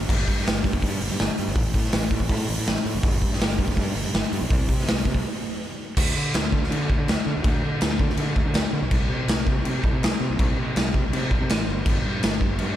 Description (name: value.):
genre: indie rock.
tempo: 163 BPM.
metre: 4/4.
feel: straight.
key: unclear.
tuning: A4 = 437 Hz.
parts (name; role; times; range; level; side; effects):
fuzz fingered electric bass; bass; 0.0-12.8 s; F#1 to D3; -26 LUFS; equal; overdrive.
raw garage drum kit; drums; 0.1-12.7 s; crash cymbal, hi-hat, kick drum, snare drum; -22 LUFS; equal; none.
room: light reverb.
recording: none.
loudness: -21 LUFS.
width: side -12 dB against mid.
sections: 0.0-6.0 A section; 6.0-12.8 B section.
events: break 5.2-6.0.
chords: none.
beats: | 0.09 0.46 0.83 1.19 | 1.56 1.93 2.30 2.67 | 3.03 3.40 3.77 4.14 | 4.51 4.87 5.24 5.61 | 5.98 6.34 6.71 7.08 | 7.45 7.82 8.19 8.55 | 8.92 9.29 9.66 10.02 | 10.39 10.76 11.13 11.50 | 11.86 12.23 12.60.